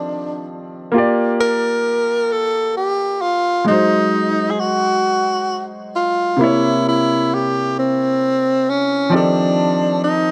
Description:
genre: R&B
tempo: 44 BPM (dotted quarters)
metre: 6/8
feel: straight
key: Bb major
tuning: A4 = 444 Hz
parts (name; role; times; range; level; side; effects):
- breathy tenor saxophone; melody; 0.0-10.3 s; C4 to Bb4; -19 LUFS; equal; none
- clear baby grand piano; accompaniment; 0.0-10.3 s; C3 to D5; -22 LUFS; equal; none
room: moderate studio reverb, RT60 0.6 s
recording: none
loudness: -17 LUFS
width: mono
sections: 0.0-10.3 A section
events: none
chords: 0.0 F13; 0.9 Bb6; 3.7 Ab7; 6.4 C7b9; 9.1 F13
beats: | 0.92 2.29 | 3.65 5.01 | 6.38 7.74 | 9.11

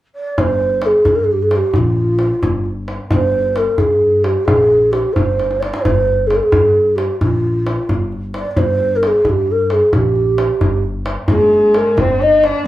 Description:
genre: Persian modal ensemble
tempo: 88 BPM (dotted quarters)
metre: 6/8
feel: straight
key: G dastgah shur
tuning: A4 = 436 Hz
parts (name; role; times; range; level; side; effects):
- breathy mellow low ney; melody; 0.1-12.7 s; F4 to Eb5; -14 LUFS; equal; none
- upright bass; bass; 0.4-12.5 s; G1 to G2; -20 LUFS; left 1 dB; none
- tombak; percussion; 0.4-12.5 s; none; -20 LUFS; equal; none
- dark cello; second line; 11.3-12.7 s; Ab3+50c to Eb4; -19 LUFS; left 1 dB; none
room: light reverb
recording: band playing live in one room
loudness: -12 LUFS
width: side -14 dB against mid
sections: 0.4-11.3 A section; 11.3-12.7 B section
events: drum fill 5.4-5.8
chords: none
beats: | 0.38 1.06 | 1.74 2.43 | 3.11 3.79 | 4.48 5.16 | 5.84 6.53 | 7.21 7.89 | 8.58 9.26 | 9.94 10.62 | 11.30 11.99 | 12.67

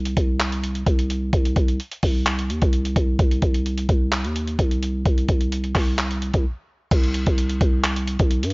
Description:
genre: hip hop, trap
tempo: 129 BPM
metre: 4/4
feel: half-time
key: C minor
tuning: A4 = 438 Hz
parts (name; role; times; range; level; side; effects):
- growling 808-style bass; bass; 0.0-8.5 s; C2 to G2; -22 LUFS; equal; none
- boom bap sampler-style drum kit; drums; 0.1-8.5 s; crash cymbal, handclaps, hi-hat, kick drum; -21 LUFS; equal; none
room: little or no reverb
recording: worn, warbling old tape, cassette tape, warbly pitch drift, nothing above 7.5 kHz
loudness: -19 LUFS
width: side -31 dB against mid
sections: 0.0-6.9 A section; 6.9-8.5 B section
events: break 6.4-6.9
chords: none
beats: 0.40 0.87 | 1.33 1.80 2.26 2.73 | 3.19 3.66 4.12 4.59 | 5.05 5.52 5.98 6.45 | 6.91 7.38 7.84 8.31

